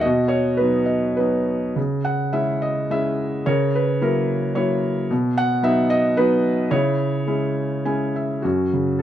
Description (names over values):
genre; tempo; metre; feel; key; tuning
classical, lyrical solo piano; 99-112 BPM; 3/4; rubato; C# dorian; A4 = 440 Hz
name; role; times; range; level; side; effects
felt-muted upright piano; solo; 0.0-9.0 s; F#2 to G#5; -18 LUFS; equal; none
room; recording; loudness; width
moderate studio ambience, RT60 0.5 s; dark, warm production; -18 LUFS; side -11 dB against mid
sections
0.0-8.4 A section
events
felt piano fill 7.6-8.4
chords
0.0 B; 1.8 C#m; 3.5 F#7/C#; 5.1 B; 6.7 C#m; 8.4 F#5